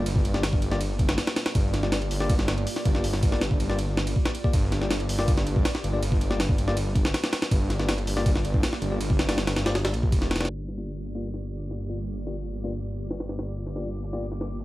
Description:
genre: drum and bass, jungle.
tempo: 161 BPM.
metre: 4/4.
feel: straight.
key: G minor.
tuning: A4 = 441 Hz.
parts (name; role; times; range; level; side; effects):
ethereal airy pad; sustained chords; 0.0-14.6 s; Bb3 to D5; -36 LUFS; right 1 dB; ensemble chorus, built-in reverb.
tine electric piano; stabs; 0.0-14.3 s; Bb3 to D5; -34 LUFS; left 3 dB; low-pass filter, dub echo.
detuned saw bass; bass; 0.0-14.6 s; F1 to Bb1; -28 LUFS; equal; none.
jungle sampler-style drum kit; drums; 0.1-14.6 s; hi-hat, kick drum, ride cymbal, snare drum; -25 LUFS; equal; high-pass filter on snare, small room ambience, high-pass filter on cymbals, high-pass filter on hats, high-pass filter on kick.
twinkling granular texture; texture; 12.6-14.6 s; D6; -57 LUFS; left 2 dB; built-in reverb.
room: little or no reverb.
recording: dry, gritty hardware recording, vinyl crackle, low-pass filter.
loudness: -23 LUFS.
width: side -17 dB against mid.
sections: 0.0-10.5 A section; 10.5-14.6 B section.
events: drop 0.0-10.5; filter sweep on tine electric piano 10.5-14.6; filter sweep 10.5-14.6.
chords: 0.0 Gm7.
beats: | 0.06 0.43 0.81 1.18 | 1.55 1.93 2.30 2.67 | 3.04 3.42 3.79 4.16 | 4.53 4.91 5.28 5.65 | 6.02 6.40 6.77 7.14 | 7.51 7.89 8.26 8.63 | 9.01 9.38 9.75 10.12 | 10.50 10.87 11.24 11.61 | 11.99 12.36 12.73 13.11 | 13.48 13.85 14.22 14.60.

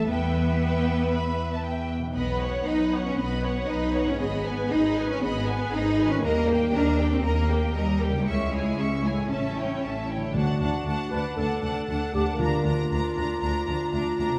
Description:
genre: cinematic.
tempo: 117 BPM.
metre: 4/4.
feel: straight.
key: unclear.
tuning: A4 = 440 Hz.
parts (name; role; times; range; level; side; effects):
rich symphonic violin section; melody; 0.0-14.4 s; F#5 to C#6; -38 LUFS; equal; none.
rich symphonic violin section; second line; 0.0-14.4 s; A#4 to Bb5; -38 LUFS; equal; none.
clear symphonic viola section; accompaniment; 0.0-14.4 s; C#4 to C#5; -36 LUFS; equal; none.
concert harp; arpeggios; 0.0-14.4 s; G#2 to F5; -36 LUFS; equal; none.
clear symphonic double bass section; bass; 0.0-14.3 s; G#1 to E2; -31 LUFS; equal; none.
rich symphonic cello section; bass; 0.0-14.3 s; D2 to D#4; -30 LUFS; equal; none.
mellow clarinet; second line; 10.3-14.4 s; F4 to B4; -32 LUFS; equal; none.
timpani; percussion; 10.3-13.1 s; D3; -34 LUFS; equal; none.
room: wet recital hall reverb, RT60 1.6 s.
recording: recorded in a church or concert hall.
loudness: -26 LUFS.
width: mono.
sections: 0.0-10.3 A section; 10.3-14.4 B section.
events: none.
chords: 0.1 Em; 2.1 Badd9; 4.2 G#m; 6.2 D#; 8.3 C#m; 9.3 A7; 10.3 D; 12.4 Bb/D.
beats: | 0.08 0.60 1.11 1.63 | 2.15 2.66 3.17 3.69 | 4.20 4.71 5.22 5.72 | 6.23 6.74 7.25 7.75 | 8.27 8.78 9.30 9.83 | 10.35 10.86 11.37 11.89 | 12.40 12.91 13.42 13.93.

